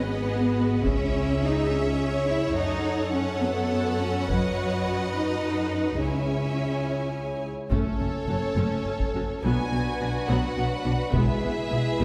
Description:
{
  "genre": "cinematic, epic orchestral film score",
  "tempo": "70 BPM (dotted quarters)",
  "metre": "6/8",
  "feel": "straight",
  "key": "C# minor, F# minor from 7.7 s",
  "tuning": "A4 = 440 Hz",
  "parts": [
    { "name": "rich studio violin section", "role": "melody", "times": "0.0-12.0 s", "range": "E4 to G#5", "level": "-38 LUFS", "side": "equal", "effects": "none" },
    { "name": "clear symphonic violin section", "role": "second line", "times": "0.0-12.0 s", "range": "F#4 to G#5", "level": "-35 LUFS", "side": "equal", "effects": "none" },
    { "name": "warm symphonic viola section", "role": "accompaniment", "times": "0.0-12.0 s", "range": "F#3 to B4", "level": "-34 LUFS", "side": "equal", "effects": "none" },
    { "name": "rich studio double bass section", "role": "bass", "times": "0.0-12.0 s", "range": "F#1 to F#2", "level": "-31 LUFS", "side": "equal", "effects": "none" },
    { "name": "rich symphonic cello section", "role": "bass", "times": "0.0-12.0 s", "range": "F#2 to E4", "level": "-31 LUFS", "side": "equal", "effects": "none" },
    { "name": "taiko ensemble", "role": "drums", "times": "0.9-12.0 s", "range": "none", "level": "-33 LUFS", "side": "equal", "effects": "none" },
    { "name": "warm French horn section", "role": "sustained chords", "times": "7.7-12.0 s", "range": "F#3 to E4", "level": "-35 LUFS", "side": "equal", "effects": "none" }
  ],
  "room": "wet scoring stage reverb, RT60 1.9 s",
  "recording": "heard from further back in the room",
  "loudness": "-26 LUFS",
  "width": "mono",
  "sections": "0.0-7.7 A section; 7.7-12.0 B section",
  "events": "none",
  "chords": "0.0 G#m; 0.9 C#m; 2.6 F#m; 4.3 B/F#; 6.0 C#m; 7.7 F#m; 9.4 Bm; 11.1 E/B",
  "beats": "0.00 | 0.86 1.72 | 2.57 3.43 | 4.29 5.14 | 6.00 6.86 | 7.71 8.57 | 9.43 10.29 | 11.14 12.00"
}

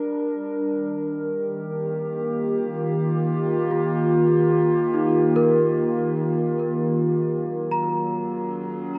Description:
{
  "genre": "ambient",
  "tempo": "free time",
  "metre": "none",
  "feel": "none",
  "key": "unclear",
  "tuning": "A4 = 445 Hz",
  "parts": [
    { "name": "warbly tape-like pad", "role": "sustained chords", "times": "0.0-9.0 s", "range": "Eb3 to Bb4", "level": "-24 LUFS", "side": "equal", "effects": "chorus, built-in reverb" },
    { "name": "large celesta", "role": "arpeggios", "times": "0.0-9.0 s", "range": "Eb4 to Bb5", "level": "-27 LUFS", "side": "equal", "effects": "delay" }
  ],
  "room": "wet cathedral reverb, RT60 5.4 s",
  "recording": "in a vast, echoing space",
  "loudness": "-23 LUFS",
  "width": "mono",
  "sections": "0.0-9.0 A section",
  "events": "fade-out 5.1-9.0",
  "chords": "0.0 Gm; 0.7 Eb; 7.3 Gb",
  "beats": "free time"
}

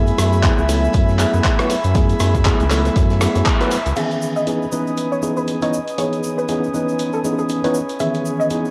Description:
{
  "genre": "deep house",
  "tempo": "119 BPM",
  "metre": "4/4",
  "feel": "swing 58% on 16ths",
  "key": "C# minor",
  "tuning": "A4 = 440 Hz",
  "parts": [
    { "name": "airy breathy pad", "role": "sustained chords", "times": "0.0-8.7 s", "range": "C#4 to D#6", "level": "-28 LUFS", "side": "equal", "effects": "chorus, vintage 12-bit sampler grit, sidechain pumping" },
    { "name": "tine electric piano", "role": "stabs", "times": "0.0-8.7 s", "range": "D#3 to C#5", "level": "-23 LUFS", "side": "equal", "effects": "overdrive, sidechain pumping" },
    { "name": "round analog bass", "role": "bass", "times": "0.0-3.9 s", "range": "C#2 to F#2", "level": "-20 LUFS", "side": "equal", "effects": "sidechain pumping" },
    { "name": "dusty soul sampler-style drum kit", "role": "drums", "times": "0.1-8.6 s", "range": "crash cymbal, handclaps, hi-hat, rim click", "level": "-27 LUFS", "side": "equal", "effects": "cassette tape" },
    { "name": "egg shaker", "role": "percussion", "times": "0.1-8.7 s", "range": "none", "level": "-39 LUFS", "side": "equal", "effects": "none" },
    { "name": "huge arena drum kit", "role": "drums", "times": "0.2-4.0 s", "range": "hi-hat, snare drum", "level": "-38 LUFS", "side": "equal", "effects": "none" },
    { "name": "electronic kick drum", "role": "drums", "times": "0.4-3.6 s", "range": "none", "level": "-20 LUFS", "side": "equal", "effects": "cassette tape" },
    { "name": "soft round pluck", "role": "melody", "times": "4.0-8.7 s", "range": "G#4 to E5", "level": "-27 LUFS", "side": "equal", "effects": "ensemble chorus, cassette tape" }
  ],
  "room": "moderate spring reverb, RT60 2.3 s",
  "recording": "home recording on cassette",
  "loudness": "-18 LUFS",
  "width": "mono",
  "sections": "0.0-4.0 A section; 4.0-8.7 B section",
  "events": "band accent 3.5",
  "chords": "0.0 F#m11; 4.0 C#m9",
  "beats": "0.44 0.94 1.45 | 1.95 2.45 2.96 3.46 | 3.97 4.47 4.97 5.48 | 5.98 6.49 6.99 7.50 | 8.00 8.50"
}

